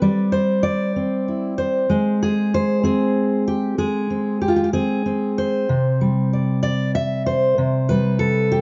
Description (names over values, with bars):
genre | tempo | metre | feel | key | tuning
folk, solo fingerstyle acoustic guitar | 64 BPM (dotted quarters) | 6/8 | straight | unclear | A4 = 440 Hz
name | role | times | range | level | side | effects
fingerpicked steel-string acoustic guitar | solo | 0.0-8.6 s | C3 to E5 | -20 LUFS | equal | none
room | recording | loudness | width
light reverb | nothing above 7.8 kHz | -20 LUFS | mono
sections
0.0-5.7 A section; 5.7-8.6 B section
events
none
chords
0.0 Gsus4; 1.9 Fm/Ab (rootless); 5.7 Csus2; 7.6 C5